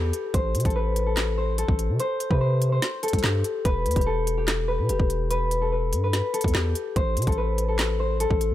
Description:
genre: hip hop, drill.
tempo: 145 BPM.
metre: 4/4.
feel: half-time.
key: E minor.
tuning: A4 = 439 Hz.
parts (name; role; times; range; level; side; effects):
concert harp; melody; 0.0-8.5 s; G4 to C5; -26 LUFS; left 2 dB; low-pass filter, tape echo.
long sustained 808-style bass; bass; 0.0-8.5 s; E1 to C3; -25 LUFS; equal; none.
drill drum kit; drums; 0.1-8.5 s; handclaps, hi-hat, kick drum, snare drum; -26 LUFS; equal; none.
room: little or no reverb.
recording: none.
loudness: -22 LUFS.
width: side -13 dB against mid.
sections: 0.0-8.5 A section.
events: none.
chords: 0.3 Am; 2.0 C5; 3.7 Em; 7.0 Am.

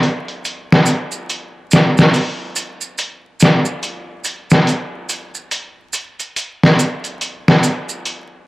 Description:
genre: trip hop.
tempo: 71 BPM.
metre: 4/4.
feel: swing 60% on 16ths.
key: none.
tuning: none.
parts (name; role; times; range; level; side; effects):
trip hop sampler-style drum kit; drums; 0.0-8.3 s; hi-hat, snare drum; -14 LUFS; equal; low-pass filter on hats, vintage 12-bit sampler grit, low-pass filter on snare.
maracas; percussion; 0.4-8.3 s; none; -25 LUFS; right 4 dB; none.
room: moderate spring reverb, RT60 2.5 s.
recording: vinyl crackle.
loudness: -14 LUFS.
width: side -19 dB against mid.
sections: 0.0-8.5 A section.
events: none.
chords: none.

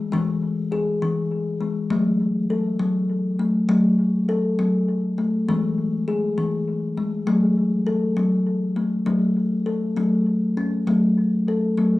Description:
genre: world meditative, meditative tuned percussion.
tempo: 67 BPM (dotted quarters).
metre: 6/8.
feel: straight.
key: F# minor.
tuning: A4 = 438 Hz.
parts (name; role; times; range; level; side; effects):
kalimba; solo; 0.0-12.0 s; E3 to A4; -19 LUFS; left 1 dB; cassette tape, analog delay.
room: wet studio reverb, RT60 0.6 s.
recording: home recording on cassette.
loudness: -19 LUFS.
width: side -18 dB against mid.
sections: 0.0-9.1 A section; 9.1-12.0 B section.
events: none.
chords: 0.0 E; 1.9 F#m; 5.5 E; 7.3 F#m.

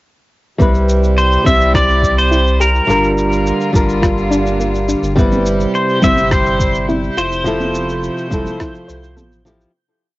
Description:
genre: sunset chillout.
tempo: 105 BPM.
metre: 4/4.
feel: straight.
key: C major.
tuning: A4 = 438 Hz.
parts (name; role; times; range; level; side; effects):
flamenco guitar; accompaniment; 0.6-9.7 s; F3 to C5; -18 LUFS; equal; auto-pan, low-pass filter, cassette tape, analog delay.
rich chamber string section; sustained chords; 0.6-9.7 s; C3 to G4; -24 LUFS; left 1 dB; cassette tape.
soft round pluck; arpeggios; 0.6-9.7 s; Bb3 to C5; -22 LUFS; left 2 dB; chorus, cassette tape, analog delay.
warm sub bass; bass; 0.6-9.7 s; F1 to C2; -18 LUFS; equal; none.
electronic kick drum; drums; 0.6-8.7 s; none; -17 LUFS; equal; cassette tape.
electronic shaker and rim click; drums; 0.6-9.7 s; none; -26 LUFS; equal; cassette tape.
pedal steel guitar; melody; 1.2-9.1 s; Bb4 to E5; -16 LUFS; equal; cassette tape, analog delay.
twinkling granular texture; texture; 5.6-9.8 s; G6; -31 LUFS; right 1 dB; built-in reverb, cassette tape.
congas; percussion; 5.3-9.3 s; none; -22 LUFS; right 2 dB; none.
room: moderate booth ambience, RT60 0.2 s.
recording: home recording on cassette, nothing above 7.7 kHz.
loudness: -12 LUFS.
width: side -18 dB against mid.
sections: 0.6-9.7 groove.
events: fade-out 6.7-9.7.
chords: 0.6 Cmaj7; 2.9 Gm7; 5.2 Cmaj7/G; 7.2 Fmaj7.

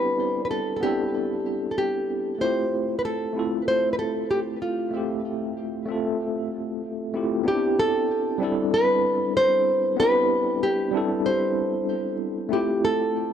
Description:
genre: chillout.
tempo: 95 BPM.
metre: 4/4.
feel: straight.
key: unclear.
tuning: A4 = 440 Hz.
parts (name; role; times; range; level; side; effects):
nylon-string guitar; melody; 0.0-13.3 s; F4 to C5; -24 LUFS; equal; tape echo.
tine electric piano; accompaniment; 0.0-13.3 s; G3 to E5; -26 LUFS; left 1 dB; medium stereo tremolo, auto-pan.
room: moderate plate reverb, RT60 3.4 s.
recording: dry, gritty hardware recording.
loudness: -22 LUFS.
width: side -8 dB against mid.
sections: 0.0-7.5 A section; 7.5-13.3 B section.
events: none.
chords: 0.0 Cmaj9; 2.4 Fmaj7; 7.5 Cmaj9; 12.5 Fmaj7.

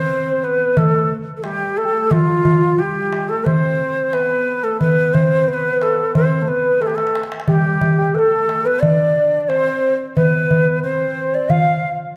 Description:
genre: Arabic maqam ensemble.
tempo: 90 BPM.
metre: 4/4.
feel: straight.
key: unclear.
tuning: A4 = 444 Hz.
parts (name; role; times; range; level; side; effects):
breathy ney; melody; 0.0-11.9 s; F4 to F5; -21 LUFS; equal; none.
soft octave-layered synth lead; second line; 0.0-11.9 s; F4 to F5; -23 LUFS; equal; chorus, phaser.
darbuka; percussion; 0.8-11.7 s; none; -21 LUFS; equal; none.
room: wet concert hall reverb, RT60 1.9 s.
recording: none.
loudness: -17 LUFS.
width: mono.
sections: 0.0-12.2 A section.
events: drum fill 6.8-7.5.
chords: none.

